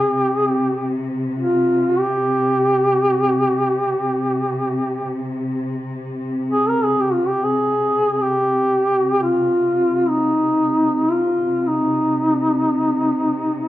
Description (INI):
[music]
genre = caucasian folk, Caucasian lament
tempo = free time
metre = none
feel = none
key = C minor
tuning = A4 = 440 Hz
[part]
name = mellow duduk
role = melody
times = 0.0-13.7 s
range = Eb4 to Bb4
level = -17 LUFS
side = equal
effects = none
[part]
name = dark studio string section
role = drone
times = 0.0-13.7 s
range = C3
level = -23 LUFS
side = left 1 dB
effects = none
[sound]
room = moderate recital hall reverb, RT60 1.5 s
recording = dark, warm production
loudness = -16 LUFS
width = side -14 dB against mid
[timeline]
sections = 0.0-13.7 A section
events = none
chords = none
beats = free time